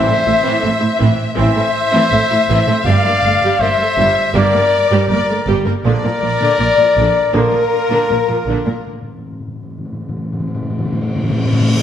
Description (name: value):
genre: cinematic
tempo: 80 BPM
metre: 4/4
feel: straight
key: unclear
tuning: A4 = 441 Hz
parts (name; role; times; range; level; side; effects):
- rich symphonic violin section; melody; 0.0-8.9 s; Bb4 to F5; -24 LUFS; left 5 dB; none
- dark symphonic violin section; second line; 0.0-8.9 s; Bb4 to F5; -25 LUFS; left 3 dB; none
- mellow concert flute; second line; 0.0-8.9 s; Bb4 to F5; -22 LUFS; left 2 dB; none
- warm symphonic viola section; accompaniment; 0.0-8.7 s; D3 to Bb4; -21 LUFS; right 1 dB; none
- clear trombone section; sustained chords; 0.0-7.6 s; E3 to C4; -26 LUFS; right 3 dB; none
- warm French horn section; sustained chords; 0.0-8.9 s; Bb4 to F5; -18 LUFS; left 4 dB; none
- warm trumpet; stabs; 0.0-8.8 s; F4 to D5; -21 LUFS; right 1 dB; none
- timpani; percussion; 0.0-1.0, 8.9-11.8 s; A2; -19 LUFS; left 1 dB; none
- warm symphonic cello section; bass; 0.1-8.7 s; G2 to Bb2; -21 LUFS; right 2 dB; none
- warm studio double bass section; bass; 0.3-8.5 s; G1 to Bb1; -20 LUFS; right 3 dB; none
- reverse cymbal; sound effects; 11.1-11.8 s; none; -27 LUFS; left 1 dB; none
room: wet scoring stage reverb, RT60 1.6 s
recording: none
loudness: -12 LUFS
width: side -9 dB against mid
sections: 0.0-11.8 A section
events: break 8.9-11.8; timpani fill 8.9-11.8; reverse cymbal 11.1-11.8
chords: 0.0 Am; 2.9 Gmadd9; 5.8 Bb; 8.9 N.C.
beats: 0.64 1.39 2.12 | 2.86 3.61 4.35 5.10 | 5.85 6.59 7.35 8.10 | 8.86 9.63 10.39 11.16